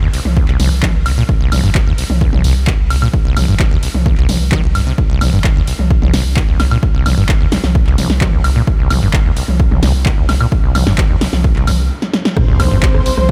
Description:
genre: acid house.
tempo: 130 BPM.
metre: 4/4.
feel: straight.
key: unclear.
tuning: A4 = 439 Hz.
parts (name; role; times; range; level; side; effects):
acid bass, saw; riff; 0.0-13.1 s; C2 to Eb3; -19 LUFS; equal; tube saturation, cassette tape, sidechain pumping.
saturated sub bass; bass; 0.0-13.3 s; G1 to C2; -20 LUFS; equal; tube saturation, sidechain pumping.
punchy analog drum machine; drums; 0.1-13.3 s; handclaps, hi-hat, rim click, snare drum, toms, woodblock; -21 LUFS; equal; none.
electronic kick drum; drums; 0.4-13.3 s; none; -17 LUFS; equal; none.
string machine, full ensemble; sustained chords; 12.4-13.3 s; C5; -22 LUFS; equal; ensemble chorus, sidechain pumping.
sub drop; sound effects; 12.4-13.3 s; none; -22 LUFS; equal; none.
room: light reverb.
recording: none.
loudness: -13 LUFS.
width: mono.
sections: 0.0-12.4 A section.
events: stop 11.9-12.4; drum fill 12.0-12.4; band accent 12.3; impact 12.4-13.3.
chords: 0.0 Cm.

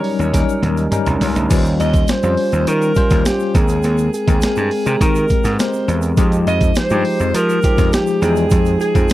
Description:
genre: polished 1980s jazz-funk pop.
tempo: 103 BPM.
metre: 4/4.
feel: straight.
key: unclear.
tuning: A4 = 442 Hz.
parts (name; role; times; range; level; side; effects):
warm alto saxophone; melody; 0.0-9.1 s; G4 to Eb5; -19 LUFS; right 1 dB; none.
bell-like tine electric piano; accompaniment; 0.0-9.1 s; F3 to G5; -19 LUFS; left 2 dB; medium stereo tremolo, analog chorus.
breakbeat sampler-style drum kit; drums; 0.0-9.1 s; crash cymbal, hi-hat, kick drum, snare drum, toms; -18 LUFS; equal; none.
gritty slap bass; bass; 0.2-9.1 s; C2 to F3; -18 LUFS; equal; overdrive.
tube shaker; percussion; 0.2-9.1 s; none; -37 LUFS; right 18 dB; none.
room: little or no reverb.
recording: dry, close 1970s-style studio recording.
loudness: -13 LUFS.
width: side -15 dB against mid.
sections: 0.0-1.5 A section; 1.5-9.1 B section.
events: drum fill 0.3-1.5.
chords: 0.0 Eb7; 1.5 Eb13; 3.5 Abmaj9/Eb; 6.2 Fm9.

